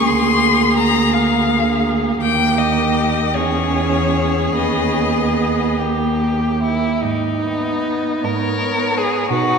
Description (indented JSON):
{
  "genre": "classical, slow romantic movement for string quartet",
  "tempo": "47-59 BPM (dotted quarters)",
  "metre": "6/8",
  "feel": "rubato",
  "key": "G# minor",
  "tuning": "A4 = 440 Hz",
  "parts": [
    { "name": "rich violin", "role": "melody", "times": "0.0-9.6 s", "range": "B4 to B#5", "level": "-20 LUFS", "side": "left 5 dB", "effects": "none" },
    { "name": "warm violin", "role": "second line", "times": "0.0-9.6 s", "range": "D#4 to A#4", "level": "-21 LUFS", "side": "left 1 dB", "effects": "none" },
    { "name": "warm viola", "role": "accompaniment", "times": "0.0-9.6 s", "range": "A#3 to D#4", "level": "-21 LUFS", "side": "right 3 dB", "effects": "none" },
    { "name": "clear cello", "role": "bass", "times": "0.0-9.6 s", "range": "D2 to B2", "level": "-21 LUFS", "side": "right 4 dB", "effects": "none" }
  ],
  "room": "wet cathedral reverb, RT60 4.4 s",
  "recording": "none",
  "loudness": "-15 LUFS",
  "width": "side -5 dB against mid",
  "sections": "0.0-7.0 A section; 7.0-9.6 B section",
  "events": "none",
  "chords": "0.1 A#7/D; 2.2 D#; 3.3 C#m/E; 4.6 G#m/D#; 5.8 D#; 7.0 G#m",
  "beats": "| 0.08 1.13 | 2.21 3.35 | 4.59 5.80 | 7.03 8.24 | 9.31"
}